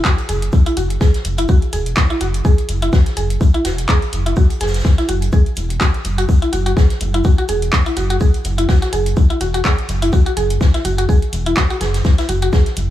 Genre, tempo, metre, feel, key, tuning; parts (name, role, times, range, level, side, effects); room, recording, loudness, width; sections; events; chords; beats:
minimal techno; 125 BPM; 4/4; swing 56% on 16ths; A4 = 442 Hz
mallet-like synth pluck; riff; 0.0-12.6 s; E4 to G#4; -21 LUFS; equal; chorus, sidechain pumping, digital delay
booming analog drum machine; drums; 0.0-12.9 s; handclaps, hi-hat; -24 LUFS; right 1 dB
electronic kick drum; drums; 0.0-12.6 s; -13 LUFS; left 1 dB
soft-mallet drum kit; drums; 0.0-12.9 s; hi-hat, shaker, snare drum; -32 LUFS; right 2 dB; sidechain pumping on hats, high-pass filter on hats, high-pass filter on snare, sidechain pumping on perc, high-pass filter on perc, high-pass filter on room
rubbery square bass; bass; 0.3-12.9 s; E1 to F#1; -19 LUFS; equal; sidechain pumping
small room ambience; -13 LUFS; side -13 dB against mid
0.0-12.9 A section
0.0 F#7(no3)
0.05 | 0.53 1.01 1.49 1.97 | 2.45 2.93 3.41 3.89 | 4.37 4.85 5.33 5.81 | 6.29 6.77 7.25 7.73 | 8.21 8.69 9.17 9.65 | 10.13 10.61 11.09 11.57 | 12.05 12.53